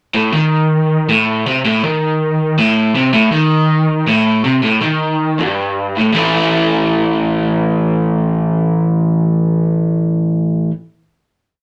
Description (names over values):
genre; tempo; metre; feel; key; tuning
rock; 160 BPM; 4/4; straight; A mixolydian; A4 = 440 Hz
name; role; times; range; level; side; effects
crunchy overdriven guitar; solo; 0.1-10.7 s; G2 to E4; -14 LUFS; equal; none
room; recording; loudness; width
moderate studio reverb, RT60 0.6 s; rough rehearsal-room recording, tube saturation; -15 LUFS; mono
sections
0.2-6.2 riff; 6.2-9.2 final chord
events
none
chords
0.2 A(b5, no3); 6.2 A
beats
| 0.16 0.54 0.91 1.28 | 1.66 2.03 2.40 2.77 | 3.15 3.52 3.90 4.27 | 4.65 5.02 5.40 5.78 | 6.16 6.54 6.92 7.30 | 7.68 8.06 8.45 8.83